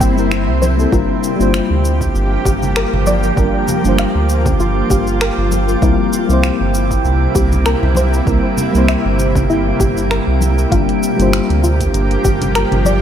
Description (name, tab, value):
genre	sunset chillout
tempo	98 BPM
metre	4/4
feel	swing 55% on 16ths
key	G dorian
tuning	A4 = 439 Hz
part	mellow FM electric piano	accompaniment	0.0-13.0 s	G3 to C5	-19 LUFS	moving between left 7 dB and right 4 dB	chorus, auto-pan, tape echo
part	shimmering ambient pad	sustained chords	0.0-13.0 s	C3 to G4	-20 LUFS	equal	chorus, built-in reverb
part	soft round pluck	arpeggios	0.0-13.0 s	E4 to G5	-22 LUFS	left 2 dB	chorus, tape echo
part	round analog bass	bass	0.0-13.0 s	G1 to D2	-16 LUFS	right 1 dB	none
part	deep house drum kit	drums	0.0-13.0 s	finger snaps, hi-hat, shaker	-25 LUFS	equal	none
part	electronic kick drum	drums	0.0-12.4 s	none	-19 LUFS	right 1 dB	none
part	drifting glass-harmonics texture	texture	0.0-13.0 s	G4 to C6	-25 LUFS	right 2 dB	chorus, built-in reverb
part	congas	percussion	0.6-13.0 s	none	-23 LUFS	left 2 dB	none
room	light reverb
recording	faint mains hum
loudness	-12 LUFS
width	side -9 dB against mid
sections	0.0-13.0 A section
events	none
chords	0.0 C7; 0.9 Gm7; 5.8 C7; 10.7 Gm7